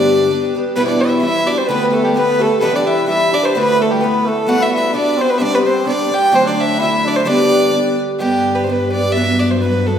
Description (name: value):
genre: celtic folk, Celtic polka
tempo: 129 BPM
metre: 2/4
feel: swing 55% on 8ths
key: G major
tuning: A4 = 440 Hz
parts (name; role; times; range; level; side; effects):
- rich fiddle; melody; 0.0-10.0 s; G4 to G5; -16 LUFS; right 2 dB; none
- trumpet with bucket mute; second line; 0.0-8.0 s; G3 to G4; -20 LUFS; left 2 dB; none
- picked twelve-string acoustic guitar; accompaniment; 0.0-10.0 s; E2 to G4; -17 LUFS; left 1 dB; none
- warm cello; drone; 8.2-10.0 s; G2; -20 LUFS; left 1 dB; none
room: wet recital hall reverb, RT60 1.7 s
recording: heard from further back in the room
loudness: -13 LUFS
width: side -8 dB against mid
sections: 0.8-8.2 A section; 8.2-10.0 B section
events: none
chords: 0.0 G; 0.8 Emadd9; 1.7 Gadd9/D; 2.6 Cadd9; 3.5 Dadd9; 4.5 Gmaj7; 5.4 Csus2; 6.3 D; 7.3 G; 9.1 Bm